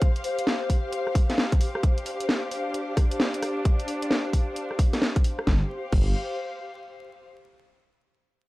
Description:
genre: UK garage, two-step garage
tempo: 132 BPM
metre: 4/4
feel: swing 63% on 16ths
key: unclear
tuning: A4 = 440 Hz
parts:
  - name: electronic kick drum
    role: drums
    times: 0.0-6.0 s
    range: none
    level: -22 LUFS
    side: equal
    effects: none
  - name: garage drum kit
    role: drums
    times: 0.0-6.0 s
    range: crash cymbal, hi-hat, rim click, snare drum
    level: -28 LUFS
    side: equal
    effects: none
  - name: warm studio string section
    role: texture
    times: 0.0-7.2 s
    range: D4 to F5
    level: -30 LUFS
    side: left 1 dB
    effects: sidechain pumping
  - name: dark detuned saw bass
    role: bass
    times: 5.5-6.1 s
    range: G1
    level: -24 LUFS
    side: equal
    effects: sidechain pumping
room: little or no reverb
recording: dry, gritty hardware recording, vinyl crackle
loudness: -23 LUFS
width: side -19 dB against mid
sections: 0.0-5.5 A section; 5.5-7.3 B section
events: none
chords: 0.0 G7sus4; 1.8 Dm7; 5.5 G7sus4

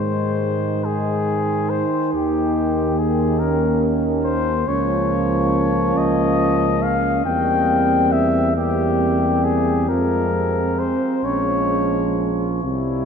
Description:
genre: classical, hymn-like piece for brass band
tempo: 42-48 BPM (dotted quarters)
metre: 6/8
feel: rubato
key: unclear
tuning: A4 = 441 Hz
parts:
  - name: dark cornet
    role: melody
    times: 0.0-13.1 s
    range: E4 to G5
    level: -22 LUFS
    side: left 5 dB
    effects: none
  - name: mellow French horn section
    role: second line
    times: 0.0-13.1 s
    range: C4 to Eb4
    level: -24 LUFS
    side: right 4 dB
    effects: none
  - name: warm euphonium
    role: accompaniment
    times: 0.0-13.1 s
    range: G3 to Bb3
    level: -26 LUFS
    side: left 3 dB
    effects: none
  - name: warm trombone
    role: accompaniment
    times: 0.0-13.1 s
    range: C3 to G3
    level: -26 LUFS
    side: right 3 dB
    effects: none
  - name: mellow tuba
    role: bass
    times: 0.0-13.1 s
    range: Bb1 to Ab2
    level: -24 LUFS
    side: equal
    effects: none
room: wet cathedral reverb, RT60 6.5 s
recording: in a vast, echoing space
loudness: -17 LUFS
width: side -6 dB against mid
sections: 0.0-13.1 A section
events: none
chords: 0.0 Ab; 2.1 Eb7; 4.7 Bbm/Db; 7.3 C7/E; 9.9 Fm; 11.2 Bbm7

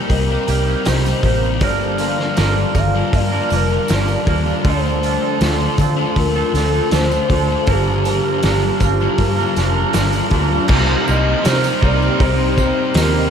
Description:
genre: rock, shoegaze and dream pop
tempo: 79 BPM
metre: 4/4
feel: straight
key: G minor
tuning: A4 = 439 Hz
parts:
  - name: picked twelve-string acoustic guitar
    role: arpeggios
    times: 0.0-13.3 s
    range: F3 to G4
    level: -28 LUFS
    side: left 7 dB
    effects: ensemble chorus, analog delay
  - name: thick fuzz guitar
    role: riff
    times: 0.0-13.3 s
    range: G2 to D4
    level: -22 LUFS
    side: left 10 dB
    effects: distortion, analog chorus
  - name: twangy electric guitar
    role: riff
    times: 0.0-13.3 s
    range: G2 to Bb4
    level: -21 LUFS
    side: right 7 dB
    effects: reverse reverb
  - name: pure breathy sine lead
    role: melody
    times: 0.1-13.3 s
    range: G4 to F5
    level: -23 LUFS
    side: equal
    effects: chorus, analog delay
  - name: vintage muted fingered electric bass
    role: bass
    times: 0.1-13.3 s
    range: F1 to D3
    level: -19 LUFS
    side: equal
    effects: none
  - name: loose indie drum kit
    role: drums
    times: 0.1-13.1 s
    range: crash cymbal, hi-hat, kick drum, snare drum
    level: -21 LUFS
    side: equal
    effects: none
  - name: tambourine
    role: percussion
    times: 0.5-13.2 s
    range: none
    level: -36 LUFS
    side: right 11 dB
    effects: none
  - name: hollow soft pad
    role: sustained chords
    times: 10.7-13.3 s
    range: Eb4 to C6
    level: -26 LUFS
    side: equal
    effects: chorus
  - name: distorted electric guitar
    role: riff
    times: 10.7-13.3 s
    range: C3 to C4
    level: -23 LUFS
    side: right 3 dB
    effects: overdrive
room: moderate huge ambient reverb, RT60 7.6 s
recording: dreamy mix soaked in reverb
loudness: -14 LUFS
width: side -7 dB against mid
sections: 0.0-10.7 A section; 10.7-13.3 B section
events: none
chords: 0.0 Cm7; 1.6 Gm7; 4.6 Dm7; 7.7 Gm7; 10.7 Cm7

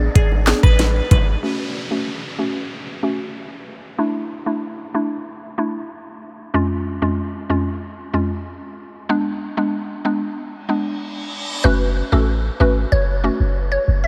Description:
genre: dancehall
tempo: 94 BPM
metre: 4/4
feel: straight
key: F# minor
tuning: A4 = 441 Hz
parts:
  - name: clean 808-style bass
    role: bass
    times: 0.0-1.4, 11.6-14.1 s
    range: F#1 to A1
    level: -19 LUFS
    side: equal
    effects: none
  - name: glassy wavetable pluck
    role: second line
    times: 0.2-1.4 s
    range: G#4 to B4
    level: -30 LUFS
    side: equal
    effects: chorus, delay
  - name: afro-pop drum kit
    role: drums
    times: 0.2-1.3 s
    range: handclaps, hi-hat, kick drum, rim click, snare drum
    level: -19 LUFS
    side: equal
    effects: none
  - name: bongos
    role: percussion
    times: 0.3-1.3 s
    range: none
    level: -32 LUFS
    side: equal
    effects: none
  - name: mallet-like synth pluck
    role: accompaniment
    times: 0.5-13.4 s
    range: E#2 to G#4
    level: -25 LUFS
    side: equal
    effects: chorus, sidechain pumping, low-pass filter
  - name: downlifter and reverse cymbal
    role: sound effects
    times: 1.4-6.5, 10.7-11.6 s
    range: none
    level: -35 LUFS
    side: equal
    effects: none
  - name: glassy wavetable pluck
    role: melody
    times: 11.6-14.1 s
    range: A4 to E5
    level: -26 LUFS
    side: equal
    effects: chorus, delay
room: moderate huge ambient reverb, RT60 8.5 s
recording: dreamy mix soaked in reverb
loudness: -20 LUFS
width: mono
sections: 0.0-1.4 A section; 1.4-11.6 B section; 11.6-14.1 C section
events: filter sweep on synth pluck 1.4-11.6; reverse cymbal 10.7-11.6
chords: 0.0 G#dim; 1.4 F#m; 4.0 E7sus4; 6.5 C#/E#; 9.1 G#dim; 11.6 F#m

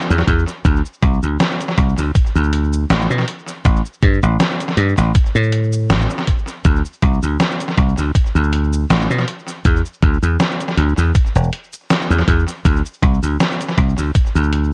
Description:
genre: vaporwave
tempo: 80 BPM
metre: 4/4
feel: swing 54% on 16ths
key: unclear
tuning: A4 = 441 Hz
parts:
  - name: dry thumbed slap bass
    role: bass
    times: 0.1-14.7 s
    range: E1 to B2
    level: -17 LUFS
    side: equal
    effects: tube saturation
  - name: detuned 8-bit digital drum machine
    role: drums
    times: 0.1-14.7 s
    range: cabasa, hi-hat, snare drum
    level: -23 LUFS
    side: equal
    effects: tape echo
  - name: electronic kick drum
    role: drums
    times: 0.3-14.3 s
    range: none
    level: -18 LUFS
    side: equal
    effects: none
room: light reverb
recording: echo-heavy mix, cassette tape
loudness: -17 LUFS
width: mono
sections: 0.0-14.7 A section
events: none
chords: none

